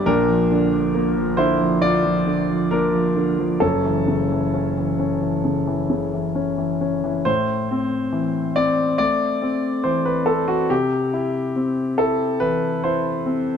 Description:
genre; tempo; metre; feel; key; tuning
neoclassical minimalist piano; 65-71 BPM; 4/4; rubato; unclear; A4 = 440 Hz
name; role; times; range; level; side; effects
warm concert grand piano; solo; 0.0-13.6 s; F#1 to E5; -18 LUFS; left 1 dB; none
room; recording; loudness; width
light reverb; dark, warm production; -18 LUFS; side -7 dB against mid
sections
0.0-7.3 A section; 7.3-13.6 B section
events
none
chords
0.1 Bb; 3.6 F#m7; 7.3 Am; 10.7 C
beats
| 0.08 0.95 1.82 2.71 | 3.63 4.55 5.46 6.37 | 7.27 8.14 8.99 9.85 | 10.71 11.56 12.41 13.27

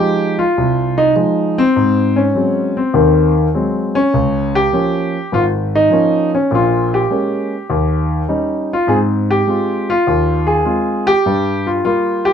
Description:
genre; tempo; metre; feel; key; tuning
jazz; 101 BPM; 4/4; swing 69% on 8ths; unclear; A4 = 439 Hz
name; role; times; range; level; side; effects
warm grand piano; solo; 0.0-12.3 s; Ab1 to Ab4; -13 LUFS; equal; none
room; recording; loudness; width
moderate club reverb, RT60 0.5 s; minimal, uncompressed stereo recording; -13 LUFS; side -8 dB against mid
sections
0.0-12.3 A section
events
none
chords
0.0 Fm7; 1.8 Ab7; 4.1 Db6; 6.5 Bbm7; 7.7 Eb7; 8.9 Ab6; 11.3 Gm7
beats
0.57 1.16 | 1.75 2.35 2.94 3.53 | 4.13 4.72 5.32 5.91 | 6.50 7.10 7.69 8.29 | 8.88 9.47 10.07 10.66 | 11.26 11.85

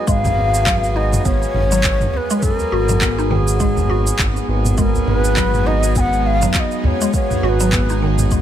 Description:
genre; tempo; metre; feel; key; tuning
organic downtempo; 102 BPM; 4/4; swing 58% on 16ths; G# dorian; A4 = 435 Hz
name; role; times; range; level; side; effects
breathy mellow low ney; melody; 0.0-8.0 s; G#4 to G#5; -22 LUFS; left 1 dB; ping-pong delay
hand-pumped harmonium; accompaniment; 0.0-8.4 s; F#3 to G#4; -25 LUFS; right 2 dB; sidechain pumping, digital delay
bowed-like drone; sustained chords; 0.0-8.4 s; G#3 to G#4; -27 LUFS; right 1 dB; built-in reverb, sidechain pumping
mallet-like synth pluck; arpeggios; 0.1-8.4 s; D#3 to F#4; -23 LUFS; equal; lush chorus, digital delay
smooth gliding synth bass; bass; 0.1-8.4 s; G#1; -19 LUFS; equal; sidechain pumping
electronic kick drum; drums; 0.1-8.4 s; none; -20 LUFS; equal; none
organic electronic drum kit; drums; 0.1-8.4 s; cabasa, handclaps, toms; -22 LUFS; right 1 dB; overdrive, low-pass filter on toms, low-pass filter on perc, low-pass filter on snare, low-pass filter on room
udu; percussion; 0.2-7.4 s; none; -23 LUFS; equal; none
room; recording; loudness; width
light reverb, digital ambience; none; -14 LUFS; side -10 dB against mid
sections
0.1-8.4 A section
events
none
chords
0.1 G#m7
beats
| 0.08 0.67 1.25 1.84 | 2.43 3.02 3.61 4.20 | 4.78 5.37 5.96 6.55 | 7.14 7.72 8.31

